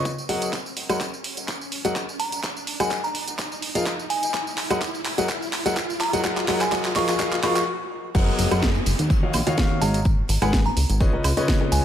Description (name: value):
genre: piano house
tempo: 126 BPM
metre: 4/4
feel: swing 54% on 16ths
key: F# major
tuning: A4 = 440 Hz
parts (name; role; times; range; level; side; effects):
- clear grand piano; riff; 0.0-11.8 s; C#3 to F#5; -25 LUFS; left 2 dB; sidechain pumping, low-pass filter, digital delay
- riser and downlifter; sound effects; 0.0-11.8 s; none; -32 LUFS; equal; none
- electronic kick drum; drums; 0.1-11.6 s; none; -24 LUFS; equal; high-pass filter on kick, high-pass filter on room
- house drum kit; drums; 0.1-11.8 s; crash cymbal, handclaps, hi-hat, snare drum, tambourine, woodblock; -28 LUFS; right 2 dB; high-pass filter on hats, high-pass filter on perc, high-pass filter on snare, high-pass filter on cymbals, high-pass filter on room
- glassy synth bell; melody; 2.2-11.8 s; G#5 to C#6; -29 LUFS; right 2 dB; chorus, digital delay
- plucky analog bass; bass; 8.1-11.8 s; F#1 to D#2; -23 LUFS; equal; sidechain pumping
- tambourine; percussion; 8.1-11.8 s; none; -38 LUFS; left 7 dB; none
room: light reverb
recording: none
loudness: -21 LUFS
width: side -10 dB against mid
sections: 0.0-8.1 A section; 8.1-11.8 B section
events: build-up 0.0-8.1; riser 0.0-7.7; drum fill 0.5-7.7; stop 7.7-8.1; drop 8.1-11.8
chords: 0.0 C#9; 0.5 F#69; 3.1 Fmadd11; 4.3 F#69; 7.0 C#69/E#; 8.1 F#69; 9.1 D#m9; 10.1 G#m9; 10.8 C#9